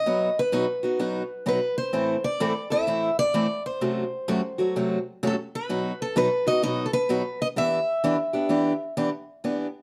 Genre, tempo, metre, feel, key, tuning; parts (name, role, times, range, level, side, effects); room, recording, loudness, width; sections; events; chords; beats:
jazz; 128 BPM; 4/4; swing 64% on 8ths; E minor; A4 = 440 Hz
picked steel-string acoustic guitar; melody; 0.0-8.9 s; A4 to E5; -28 LUFS; equal
picked steel-string acoustic guitar; accompaniment; 0.1-9.7 s; F#2 to A4; -28 LUFS; equal
moderate studio reverb, RT60 0.6 s; dark, warm production; -25 LUFS; mono
0.0-9.4 A section
0.1 B; 1.9 Am; 3.8 F#dim; 5.7 B; 7.6 Em7
| 0.06 0.53 1.00 1.47 | 1.94 2.41 2.88 3.35 | 3.82 4.29 4.75 5.22 | 5.69 6.16 6.63 7.10 | 7.57 8.04 8.51 8.98 | 9.45